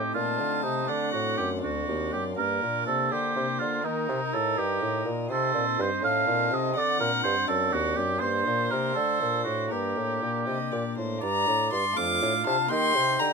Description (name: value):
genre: classical, baroque-style sonata movement with continuo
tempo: 81 BPM (dotted quarters)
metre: 6/8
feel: straight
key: G minor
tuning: A4 = 441 Hz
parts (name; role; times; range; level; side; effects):
- warm oboe; second line; 0.0-13.3 s; D4 to G5; -28 LUFS; right 4 dB; none
- chamber organ, sparkling flutes; accompaniment; 0.0-13.3 s; D2 to G4; -32 LUFS; left 2 dB; none
- clear bassoon; bass; 0.1-13.3 s; D2 to Eb3; -31 LUFS; right 1 dB; none
- warm violin; melody; 0.2-13.3 s; A4 to D6; -30 LUFS; left 5 dB; none
room: light reverb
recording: close, detailed microphones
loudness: -24 LUFS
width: side -4 dB against mid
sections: 0.0-11.2 A section; 11.2-13.3 B section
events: none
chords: 0.0 Adim; 0.9 D7; 2.4 Gm; 3.8 Am7b5; 6.8 D7; 8.2 Gm; 9.0 D5; 9.7 Gm; 12.0 Dm/F; 12.7 Eb